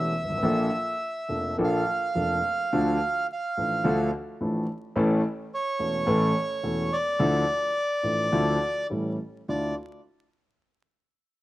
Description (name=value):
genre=tango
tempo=107 BPM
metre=4/4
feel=rubato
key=D harmonic minor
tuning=A4 = 439 Hz
part: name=bandoneon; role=melody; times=0.0-9.7 s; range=C#5 to F5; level=-27 LUFS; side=right 1 dB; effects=slapback echo
part: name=warm concert grand piano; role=accompaniment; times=0.0-9.7 s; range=E1 to A4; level=-26 LUFS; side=equal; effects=slapback echo
room=little or no reverb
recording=recorded outdoors, with no room sound, vinyl crackle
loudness=-24 LUFS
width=side -16 dB against mid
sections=0.0-9.5 A section; 9.5-11.4 B section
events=none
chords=0.4 Bbmaj7; 2.7 Dm; 5.0 A; 7.2 Dmadd9; 8.9 A7; 9.5 Dmadd9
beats=| 0.45 1.02 1.59 2.15 | 2.72 3.28 3.85 4.41 | 4.97 5.52 6.07 6.63 | 7.19 7.75 8.32 8.90 | 9.48